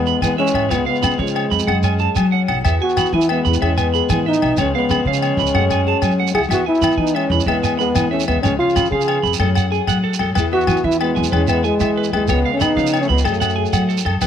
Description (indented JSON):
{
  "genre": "highlife guitar band",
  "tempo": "124 BPM (dotted quarters)",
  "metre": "12/8",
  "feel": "straight",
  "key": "E major",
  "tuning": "A4 = 440 Hz",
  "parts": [
    { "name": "breathy trombone", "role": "melody", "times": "0.0-14.1 s", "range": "G#3 to G#4", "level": "-19 LUFS", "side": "equal", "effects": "none" },
    { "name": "growling alto saxophone", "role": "second line", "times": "0.0-14.1 s", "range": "E3 to E#4", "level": "-27 LUFS", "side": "left 10 dB", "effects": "none" },
    { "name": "nylon-string guitar", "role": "accompaniment", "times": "0.0-14.3 s", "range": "E2 to G#4", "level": "-27 LUFS", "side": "left 10 dB", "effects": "none" },
    { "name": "upright bass", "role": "bass", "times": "0.0-14.3 s", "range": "B1 to F#3", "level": "-20 LUFS", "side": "right 1 dB", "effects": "none" },
    { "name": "electric guitar at the edge of break-up", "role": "arpeggios", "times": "0.1-14.3 s", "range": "A4 to B5", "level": "-23 LUFS", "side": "right 12 dB", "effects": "tape echo" },
    { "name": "shekere", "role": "percussion", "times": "0.1-14.3 s", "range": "none", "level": "-25 LUFS", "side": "right 5 dB", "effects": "none" },
    { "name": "agogo bells", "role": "percussion", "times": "0.2-14.3 s", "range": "none", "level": "-24 LUFS", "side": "left 11 dB", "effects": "none" }
  ],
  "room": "light reverb, studio reverb",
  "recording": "1960s-style stereo with parts hard left and right",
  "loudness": "-15 LUFS",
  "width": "side -9 dB against mid",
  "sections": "0.0-14.2 A section",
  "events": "none",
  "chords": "0.0 E; 0.7 C#7; 1.7 F#sus2; 2.6 E; 4.6 C#7; 5.5 F#madd9; 6.5 E; 8.4 C#7; 9.4 F#madd9; 10.4 E; 12.3 C#7; 13.3 F#madd9",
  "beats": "0.23 | 0.71 1.19 1.68 2.16 | 2.65 3.13 3.61 4.10 | 4.58 5.06 5.54 6.03 | 6.51 6.99 7.47 7.96 | 8.44 8.92 9.40 9.88 | 10.37 10.85 11.33 11.81 | 12.29 12.77 13.26 13.74 | 14.22"
}